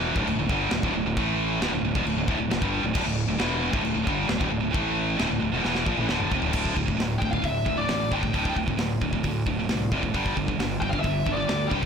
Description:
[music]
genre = heavy metal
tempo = 134 BPM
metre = 4/4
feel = straight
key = unclear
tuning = A4 = 438 Hz
[part]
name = high-gain distorted guitar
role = riff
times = 0.0-11.9 s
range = D2 to A3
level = -30 LUFS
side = left 14 dB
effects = distortion
[part]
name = scooped high-gain guitar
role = riff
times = 0.0-11.9 s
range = D2 to A3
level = -27 LUFS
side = right 8 dB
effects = distortion
[part]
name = fuzz fingered electric bass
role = bass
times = 0.0-11.9 s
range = D1 to D2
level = -31 LUFS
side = left 1 dB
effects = overdrive
[part]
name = tight metal drum kit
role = drums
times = 0.2-11.9 s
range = china cymbal, crash cymbal, hi-hat, kick drum, snare drum, toms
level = -29 LUFS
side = left 1 dB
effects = none
[part]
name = high-gain lead guitar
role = melody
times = 7.2-11.9 s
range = D5 to G5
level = -29 LUFS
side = left 2 dB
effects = distortion, ping-pong delay
[sound]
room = studio ambience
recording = blown-out, overdriven recording, overdrive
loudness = -23 LUFS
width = side -6 dB against mid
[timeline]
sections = 0.0-6.5 A section; 6.5-11.9 B section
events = drum fill 5.6-6.5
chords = 0.0 D5; 1.2 A5; 1.6 D5; 4.8 A5; 5.2 Dm; 6.5 D5; 10.1 G5

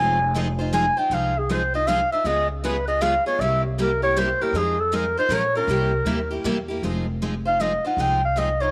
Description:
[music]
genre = acoustic string swing (jazz manouche)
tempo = 157 BPM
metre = 3/4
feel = swing 64% on 8ths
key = F minor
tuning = A4 = 437 Hz
[part]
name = breathy clarinet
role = melody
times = 0.0-8.7 s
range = G4 to Ab5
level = -24 LUFS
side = equal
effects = none
[part]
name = picked steel-string acoustic guitar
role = accompaniment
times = 0.0-8.7 s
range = C3 to C5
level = -30 LUFS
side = equal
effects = none
[part]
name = picked steel-string acoustic guitar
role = accompaniment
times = 0.0-8.5 s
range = C3 to Bb4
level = -37 LUFS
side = equal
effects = none
[part]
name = upright bass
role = bass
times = 0.0-8.7 s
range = F1 to F2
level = -30 LUFS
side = equal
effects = none
[sound]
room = light reverb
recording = none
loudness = -22 LUFS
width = mono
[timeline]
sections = 0.0-6.8 A section; 6.8-8.7 A section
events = clarinet solo 0.0-8.7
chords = 0.0 Fm7; 2.3 Db7; 3.4 C7; 4.5 Fm7; 5.3 Bbm7; 5.7 C7#9; 6.8 Fm7

